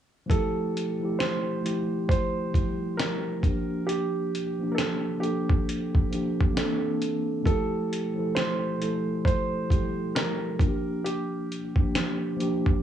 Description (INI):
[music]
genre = lo-fi hip hop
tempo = 67 BPM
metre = 4/4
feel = swing 62% on 16ths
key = F major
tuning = A4 = 438 Hz
[part]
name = felt-muted upright piano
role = melody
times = 0.3-12.8 s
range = G4 to C5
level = -33 LUFS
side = right 3 dB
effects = low-pass filter, analog delay, plate reverb
[part]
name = mellow tine electric piano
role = accompaniment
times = 0.3-12.8 s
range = E3 to A4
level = -28 LUFS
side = equal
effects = medium stereo tremolo, low-pass filter
[part]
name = dusty soul sampler-style drum kit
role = drums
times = 0.3-12.8 s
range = hi-hat, kick drum, snare drum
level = -26 LUFS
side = equal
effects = none
[sound]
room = light reverb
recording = none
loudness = -25 LUFS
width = side -10 dB against mid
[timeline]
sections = 0.3-12.8 A section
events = none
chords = 0.3 Fmaj9; 3.4 Bb6; 6.6 C13; 7.5 Fmaj9; 10.6 Bb6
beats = | 0.29 1.19 2.09 2.98 | 3.88 4.77 5.67 6.56 | 7.46 8.35 9.25 10.14 | 11.04 11.94